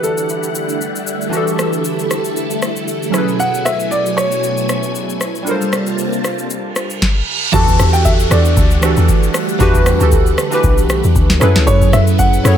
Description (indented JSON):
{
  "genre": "amapiano",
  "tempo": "116 BPM",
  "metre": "4/4",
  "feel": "swing 55% on 16ths",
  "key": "E dorian",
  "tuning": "A4 = 440 Hz",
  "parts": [
    { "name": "warm grand piano", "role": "melody", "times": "0.0-12.6 s", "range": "A4 to A5", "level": "-19 LUFS", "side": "equal", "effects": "ping-pong delay" },
    { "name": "glassy digital keys", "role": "accompaniment", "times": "0.0-12.6 s", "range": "E3 to C#5", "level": "-18 LUFS", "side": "right 2 dB", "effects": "chorus" },
    { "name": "phased string machine", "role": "sustained chords", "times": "0.0-12.6 s", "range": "A2 to A5", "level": "-22 LUFS", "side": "equal", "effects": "ensemble chorus, phaser" },
    { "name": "booming analog drum machine", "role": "drums", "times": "0.0-12.6 s", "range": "kick drum, rim click, shaker, snare drum", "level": "-17 LUFS", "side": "left 1 dB", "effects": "none" },
    { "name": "reverse cymbal and downlifter", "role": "sound effects", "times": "6.8-11.7 s", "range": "none", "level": "-24 LUFS", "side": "right 3 dB", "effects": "none" },
    { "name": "deep log drum bass", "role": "bass", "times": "7.5-12.6 s", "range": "B1 to F#2", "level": "-14 LUFS", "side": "left 1 dB", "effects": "none" }
  ],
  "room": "digital ambience",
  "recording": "none",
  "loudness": "-12 LUFS",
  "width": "side -9 dB against mid",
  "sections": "0.0-7.5 A section; 7.5-12.6 B section",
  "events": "reverse cymbal 6.8-7.5; drop 7.5-12.6",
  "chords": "0.0 Em11; 3.1 F#m11; 5.5 Gm11; 7.5 Em11; 11.4 F#m11"
}